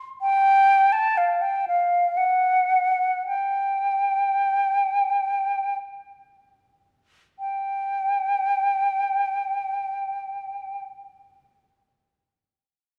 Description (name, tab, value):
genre	classical, free, expressive piece for unaccompanied flute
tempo	32-68 BPM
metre	3/4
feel	rubato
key	unclear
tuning	A4 = 440 Hz
part	concert flute	solo	0.2-10.8 s	F5 to A5	-23 LUFS	equal	none
room	wet scoring stage reverb, RT60 1.7 s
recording	none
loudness	-23 LUFS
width	mono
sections	0.0-7.4 A section; 7.4-11.4 B section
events	slowing down 0.0-7.4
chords	none